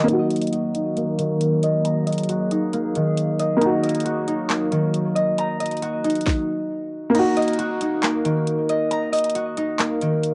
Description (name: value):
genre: hip hop, trap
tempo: 136 BPM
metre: 4/4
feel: half-time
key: Eb minor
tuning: A4 = 440 Hz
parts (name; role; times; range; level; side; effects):
- dark baby grand piano; accompaniment; 0.0-10.3 s; Bb3 to Gb4; -27 LUFS; equal; low-pass filter, cassette tape
- warbly tape-like pad; sustained chords; 0.0-6.2 s; Eb3 to Ab4; -28 LUFS; equal; chorus, built-in reverb, low-pass filter, cassette tape
- concert harp; arpeggios; 0.0-10.3 s; Eb3 to Bb5; -24 LUFS; equal; low-pass filter, cassette tape, tape echo
- trap drum kit; drums; 0.1-10.3 s; crash cymbal, handclaps, hi-hat, kick drum, snare drum; -30 LUFS; equal; cassette tape
room: wet booth ambience, RT60 0.2 s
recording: home recording on cassette, nothing above 11.0 kHz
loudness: -22 LUFS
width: mono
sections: 0.1-7.1 A section; 7.1-10.3 B section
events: filter sweep 0.1-7.1; kick muted 7.1-10.3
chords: 0.1 Ebm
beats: | 0.09 0.53 0.97 1.41 | 1.85 2.29 2.73 3.17 | 3.62 4.06 4.50 4.94 | 5.38 5.82 6.26 6.70 | 7.14 7.59 8.03 8.47 | 8.91 9.35 9.79 10.23